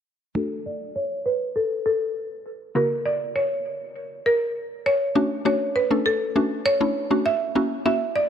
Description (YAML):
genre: pop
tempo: 100 BPM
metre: 4/4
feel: straight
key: D major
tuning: A4 = 443 Hz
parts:
  - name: buzzing marimba with hard mallets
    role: melody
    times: 0.4-8.3 s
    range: A4 to E5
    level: -23 LUFS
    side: right 1 dB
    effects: low-pass filter
  - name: mallet-like synth pluck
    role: accompaniment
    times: 0.4-8.2 s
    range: C#3 to A4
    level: -24 LUFS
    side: left 1 dB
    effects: chorus, low-pass filter
room: moderate plate reverb, RT60 3.1 s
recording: none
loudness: -21 LUFS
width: side -8 dB against mid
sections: 0.4-5.2 A section; 5.2-8.3 B section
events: filter sweep 0.4-5.2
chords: 0.4 D; 2.8 F#7; 4.9 N.C.; 5.2 Dmaj7; 7.6 F#7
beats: | 0.36 0.96 1.56 2.16 | 2.76 3.36 3.96 4.56 | 5.16 5.76 6.36 6.96 | 7.56 8.16